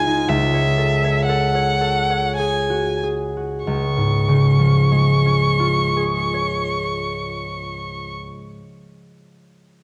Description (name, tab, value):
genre	classical, impressionist duo for violin and harp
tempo	44-65 BPM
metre	3/4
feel	rubato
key	Db major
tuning	A4 = 440 Hz
part	rich violin	melody	0.0-8.1 s	Fb5 to Db6	-24 LUFS	equal	none
part	concert harp	accompaniment	0.0-8.8 s	Db2 to Db5	-21 LUFS	equal	none
room	wet recital hall reverb, RT60 1.6 s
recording	worn, warbling old tape, cassette tape, warbly pitch drift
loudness	-19 LUFS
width	mono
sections	0.0-3.7 A section; 3.7-7.4 B section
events	slowing down 0.0-3.7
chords	0.3 Gbm9/Db; 3.7 Db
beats	| 0.30 1.27 2.38 | 3.67 4.90 6.14